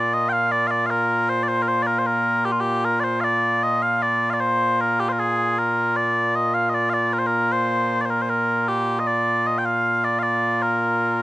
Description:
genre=scottish traditional, Scottish pipe music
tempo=77 BPM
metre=2/4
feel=straight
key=Bb major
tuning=A4 = 441 Hz
part: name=mellow small bagpipes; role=solo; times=0.0-11.2 s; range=Bb2 to G5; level=-19 LUFS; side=equal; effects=none
room=little or no reverb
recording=recorded outdoors, with no room sound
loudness=-19 LUFS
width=side -18 dB against mid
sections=0.0-11.2 A section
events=none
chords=none

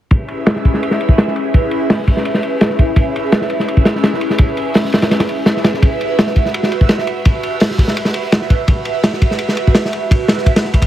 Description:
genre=drum and bass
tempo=168 BPM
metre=4/4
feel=straight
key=none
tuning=none
part: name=crunchy breakbeat drum kit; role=drums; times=0.1-10.9 s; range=hi-hat, kick drum, ride cymbal, snare drum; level=-13 LUFS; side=equal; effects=low-pass filter on kick, low-pass filter on cymbals, low-pass filter on hats, low-pass filter on snare, low-pass filter on room
room=light reverb, small room ambience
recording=heavily compressed radio sound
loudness=-12 LUFS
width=side -12 dB against mid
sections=0.1-10.9 A section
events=none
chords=none

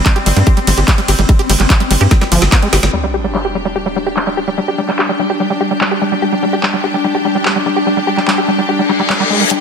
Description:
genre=psychedelic trance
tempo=146 BPM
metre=4/4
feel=straight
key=unclear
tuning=A4 = 440 Hz
part: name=pulsing gated texture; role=sustained chords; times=0.0-9.6 s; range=G3 to D4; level=-18 LUFS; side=left 1 dB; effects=chorus, built-in reverb, sidechain pumping
part: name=overdriven acid bass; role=riff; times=0.1-9.5 s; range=F3 to G4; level=-17 LUFS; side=equal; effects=distortion, auto-pan, sidechain pumping, ping-pong delay
part: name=drum and bass drum kit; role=drums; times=0.1-9.6 s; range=handclaps, hi-hat, ride cymbal, snare drum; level=-18 LUFS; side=right 1 dB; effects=low-pass filter on hats, low-pass filter on cymbals, low-pass filter on snare, low-pass filter on room
part: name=electronic kick drum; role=drums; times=0.1-2.6 s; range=none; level=-11 LUFS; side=equal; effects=none
part: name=tight sequencer bass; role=bass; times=0.3-2.9 s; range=G1 to G2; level=-12 LUFS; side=equal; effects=none
part: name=sub drop, reverse cymbal and riser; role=sound effects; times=2.9-4.6, 8.8-9.6 s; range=none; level=-19 LUFS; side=left 3 dB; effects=none
part: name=bright symphonic string section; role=texture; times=2.9-9.6 s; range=D4 to G5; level=-21 LUFS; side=left 1 dB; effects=sidechain pumping
room=moderate lush hall reverb, RT60 2.0 s, digital ambience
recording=none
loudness=-11 LUFS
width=side -6 dB against mid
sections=0.0-2.9 A section; 2.9-9.5 B section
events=drop 0.0-2.9; drum fill 2.1-2.9; impact 2.9-4.6; filter sweep on drum 2.9-9.5; filter sweep on synth texture 2.9-9.5; reverse cymbal 8.8-9.5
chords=0.0 G5

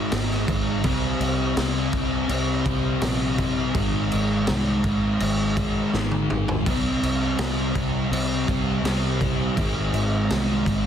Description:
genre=rock, shoegaze and dream pop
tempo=82 BPM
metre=4/4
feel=straight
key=C minor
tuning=A4 = 440 Hz
part: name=fuzz guitar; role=riff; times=0.0-10.9 s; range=Ab2 to C4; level=-24 LUFS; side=equal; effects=distortion, lush chorus
part: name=vintage muted fingered electric bass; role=bass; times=0.0-10.9 s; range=Ab1 to C2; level=-27 LUFS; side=equal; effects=none
part: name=raw garage drum kit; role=drums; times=0.1-10.8 s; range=crash cymbal, kick drum, snare drum, toms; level=-26 LUFS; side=equal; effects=none
room=light reverb, studio ambience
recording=dense, heavily limited modern master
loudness=-21 LUFS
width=side -9 dB against mid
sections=0.0-10.9 A section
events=drum fill 5.9-6.7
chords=0.0 Ab; 0.8 C5; 3.8 Ab; 6.7 C5; 9.6 Ab

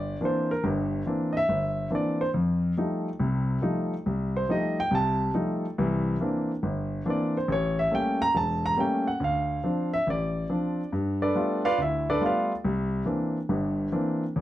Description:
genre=solo jazz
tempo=140 BPM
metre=4/4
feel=swing 67% on 8ths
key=C mixolydian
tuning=A4 = 440 Hz
part: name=warm grand piano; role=solo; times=0.0-14.4 s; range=E1 to Bb5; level=-24 LUFS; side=equal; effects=none
room=moderate club reverb, RT60 0.5 s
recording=dark, warm production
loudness=-24 LUFS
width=side -14 dB against mid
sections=0.0-14.4 A section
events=grand piano solo 0.0-14.4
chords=0.0 C9; 2.3 F9; 5.8 C9; 7.5 A7b9; 9.2 Dm7; 10.9 G9; 12.6 C9

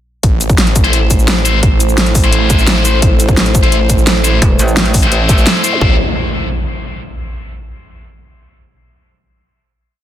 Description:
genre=dark technical drum and bass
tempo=172 BPM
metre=4/4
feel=straight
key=A minor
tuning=A4 = 440 Hz
part: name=dark analog pad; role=sustained chords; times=0.2-6.0 s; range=A3 to C5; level=-20 LUFS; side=right 1 dB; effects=wide subtle chorus, sidechain pumping
part: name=snarling distorted saw bass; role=bass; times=0.2-6.0 s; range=A1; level=-14 LUFS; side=equal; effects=tube saturation
part: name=dubstep drum kit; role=drums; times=0.2-5.7 s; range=hi-hat, shaker, snare drum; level=-14 LUFS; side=equal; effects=none
part: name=electronic kick drum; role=drums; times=0.2-5.9 s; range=none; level=-12 LUFS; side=equal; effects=none
part: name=tight distorted guitar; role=stabs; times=0.8-5.9 s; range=A3 to C5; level=-18 LUFS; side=left 3 dB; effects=distortion, tape echo
part: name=metallic wobble bass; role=bass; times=4.4-5.5 s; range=E1 to A1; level=-14 LUFS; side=equal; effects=distortion, chorus, tube saturation
part: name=zap and impact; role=sound effects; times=5.7-7.2 s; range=none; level=-20 LUFS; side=equal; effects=none
room=digital ambience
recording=dense, heavily limited modern master, faint mains hum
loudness=-9 LUFS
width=side -11 dB against mid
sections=0.2-5.8 drop; 5.8-7.2 final chord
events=drop 0.2-5.8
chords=0.2 Am

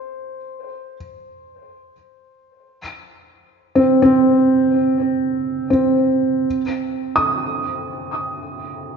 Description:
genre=ambient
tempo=free time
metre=none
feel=none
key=unclear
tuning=A4 = 440 Hz
part: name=felt-muted upright piano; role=solo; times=0.0-9.0 s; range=C4 to Eb6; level=-16 LUFS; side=right 1 dB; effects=diffuse ambient delay
room=wet concert hall reverb, RT60 2.2 s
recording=cassette tape, nothing above 7.5 kHz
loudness=-15 LUFS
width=side -6 dB against mid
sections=0.0-6.5 A section; 6.5-9.0 B section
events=none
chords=none

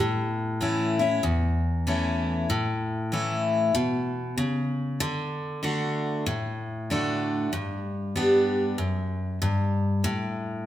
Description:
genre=country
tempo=96 BPM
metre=4/4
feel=swing 62% on 8ths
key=A mixolydian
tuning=A4 = 443 Hz
part: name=picked steel-string acoustic guitar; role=solo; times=0.0-10.7 s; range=E2 to G4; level=-24 LUFS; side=left 1 dB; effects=none
room=wet large studio reverb, RT60 1.5 s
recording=none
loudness=-24 LUFS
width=side -12 dB against mid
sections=0.0-10.7 A section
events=none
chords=0.0 A; 5.0 D; 7.5 G; 10.0 N.C.

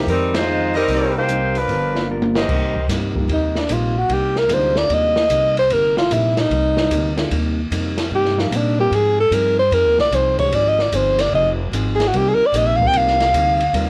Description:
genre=jazz, big band swing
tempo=149 BPM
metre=4/4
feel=swing 66% on 8ths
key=C minor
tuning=A4 = 440 Hz
part: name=mellow saxophone section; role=melody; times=0.0-2.1 s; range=F3 to C5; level=-21 LUFS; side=equal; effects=cassette tape
part: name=dark baby grand piano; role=accompaniment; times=0.0-13.9 s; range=Eb3 to C5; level=-30 LUFS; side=equal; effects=cassette tape
part: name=upright bass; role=bass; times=0.0-13.9 s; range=F1 to Bb2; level=-25 LUFS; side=equal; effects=none
part: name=hollow-body jazz guitar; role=accompaniment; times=0.1-13.9 s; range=F2 to A#4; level=-30 LUFS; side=equal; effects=cassette tape
part: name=open jazz drum kit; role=drums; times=0.1-13.9 s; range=crash cymbal, hi-hat, kick drum, ride cymbal, snare drum, toms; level=-28 LUFS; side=equal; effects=cassette tape
part: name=clear trumpet section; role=stabs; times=0.7-2.9 s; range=G4 to Eb5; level=-25 LUFS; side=equal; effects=cassette tape
part: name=breathy alto saxophone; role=melody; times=3.3-13.9 s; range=Bb3 to G5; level=-19 LUFS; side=equal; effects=cassette tape
room=light reverb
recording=home recording on cassette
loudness=-18 LUFS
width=mono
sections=0.0-2.5 A section; 2.5-13.9 B section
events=band accent 0.3; drum fill 2.1-2.5; alto saxophone solo 2.5-13.9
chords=0.1 Fm7; 0.9 Cm7; 1.7 G7#9; 2.5 Cm7; 8.9 Fm7; 12.1 Cm7

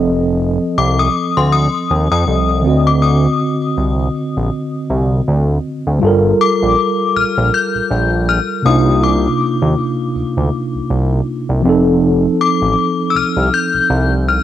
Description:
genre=contemporary R&B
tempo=80 BPM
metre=4/4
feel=swing 58% on 16ths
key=G minor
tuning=A4 = 438 Hz
part: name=mellow tine electric piano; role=accompaniment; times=0.0-14.4 s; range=C3 to Eb5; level=-16 LUFS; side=right 1 dB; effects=medium stereo tremolo, cassette tape
part: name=fat analog bass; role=bass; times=0.0-14.4 s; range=F1 to F2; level=-15 LUFS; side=right 1 dB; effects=none
part: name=synth chime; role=melody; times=0.8-14.4 s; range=C6 to G6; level=-17 LUFS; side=left 7 dB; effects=ensemble chorus, cassette tape, tape echo
room=light reverb, digital ambience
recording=home recording on cassette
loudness=-12 LUFS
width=side -12 dB against mid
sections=0.0-6.0 A section; 6.0-14.4 B section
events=none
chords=0.0 F7; 2.6 D7b9; 6.0 Gm9; 8.6 Cm11; 11.6 F7

